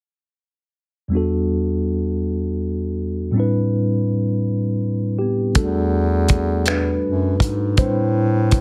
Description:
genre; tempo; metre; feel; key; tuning
slow six-eight R&B; 54 BPM (dotted quarters); 6/8; straight; E minor; A4 = 440 Hz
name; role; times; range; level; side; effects
mellow tine electric piano; accompaniment; 1.1-8.6 s; E2 to C5; -22 LUFS; equal; none
cloth-damped thuddy drum kit; drums; 5.5-8.6 s; finger snaps, hi-hat, kick drum; -19 LUFS; equal; none
mellow bass clarinet; bass; 5.6-8.6 s; E2 to A2; -22 LUFS; equal; none
room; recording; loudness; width
light reverb; heavily compressed radio sound; -20 LUFS; mono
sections
1.1-5.6 A section; 5.6-8.6 B section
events
tine electric piano solo 5.6-8.6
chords
1.1 Em11; 3.3 Am11; 5.6 Em11; 7.8 Am11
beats
| 1.11 2.22 | 3.33 4.45 | 5.56 6.67 | 7.78

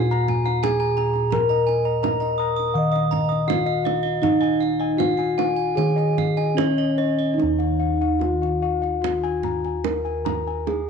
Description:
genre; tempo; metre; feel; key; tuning
Javanese gamelan; 73-86 BPM; 4/4; straight; Eb slendro; A4 = 439 Hz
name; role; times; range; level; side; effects
gamelan-type bronze metallophone; melody; 0.0-10.9 s; Db4-25c to Eb5; -23 LUFS; equal; none
gamelan-type bossed gongs; arpeggios; 0.0-10.7 s; Db5-25c to Bb5; -27 LUFS; left 12 dB; none
gamelan-type bronze metallophone; arpeggios; 0.0-7.4 s; Db5-25c to Eb6; -28 LUFS; right 10 dB; slapback echo
gamelan-type bossed gongs; bass; 0.0-10.9 s; Eb2 to Bb4; -25 LUFS; equal; transformer saturation
kendang; percussion; 0.1-10.9 s; none; -29 LUFS; right 13 dB; none
room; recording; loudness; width
light reverb, small room ambience; 1960s-style stereo with parts hard left and right; -19 LUFS; side -6 dB against mid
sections
0.0-7.4 A section; 7.4-10.9 B section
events
none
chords
none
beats
0.64 | 1.34 2.04 2.76 3.49 | 4.23 5.00 5.77 6.57 | 7.38 8.20 9.03 9.85 | 10.67

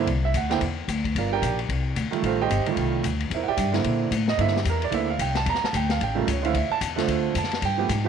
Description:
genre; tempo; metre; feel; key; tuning
jazz, small-group swing and bop; 223 BPM; 4/4; swing 61% on 8ths; C mixolydian; A4 = 440 Hz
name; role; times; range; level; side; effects
warm concert grand piano; accompaniment; 0.0-8.1 s; C#3 to Bb5; -25 LUFS; right 8 dB; none
upright bass; bass; 0.0-8.1 s; G1 to Bb2; -26 LUFS; left 2 dB; none
vintage drum kit; drums; 0.1-8.0 s; hi-hat, kick drum, ride cymbal, snare drum; -30 LUFS; left 8 dB; none
room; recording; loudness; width
light reverb, studio ambience; 1960s-style stereo with parts hard left and right; -22 LUFS; side -7 dB against mid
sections
0.0-8.1 A section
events
none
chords
0.1 Cadd9; 1.1 Gm7; 1.7 Csus2; 2.2 F9; 3.3 C9; 5.5 Dmadd9; 6.0 A7alt; 6.5 Dm7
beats
| 0.07 0.34 0.61 0.88 | 1.15 1.42 1.69 1.96 | 2.23 2.50 2.77 3.04 | 3.31 3.58 3.85 4.12 | 4.39 4.66 4.92 5.19 | 5.46 5.73 6.00 6.27 | 6.54 6.81 7.08 7.35 | 7.62 7.89

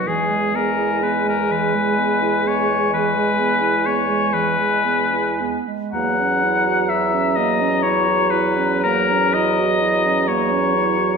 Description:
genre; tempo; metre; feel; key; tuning
classical, slow romantic movement for wind quintet; 36-44 BPM (dotted quarters); 12/8; rubato; unclear; A4 = 440 Hz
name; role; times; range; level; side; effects
silver concert flute; melody; 0.0-11.2 s; G#5 to A#5; -25 LUFS; left 7 dB; none
clear oboe; second line; 0.0-11.2 s; G#4 to F#5; -20 LUFS; left 3 dB; none
dark clarinet; accompaniment; 0.0-11.2 s; E3 to F#4; -25 LUFS; right 7 dB; none
dark bassoon; bass; 0.0-11.2 s; E2; -25 LUFS; right 3 dB; none
warm French horn; accompaniment; 0.1-11.2 s; F#3 to G#3; -25 LUFS; right 3 dB; none
room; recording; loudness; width
moderate scoring stage reverb, RT60 1.8 s; minimal, uncompressed stereo recording; -16 LUFS; side -5 dB against mid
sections
0.0-11.2 A section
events
none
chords
0.1 E; 5.9 F#7/E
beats
| 0.08 1.51 2.93 4.34 | 5.94 7.38 8.85 10.29

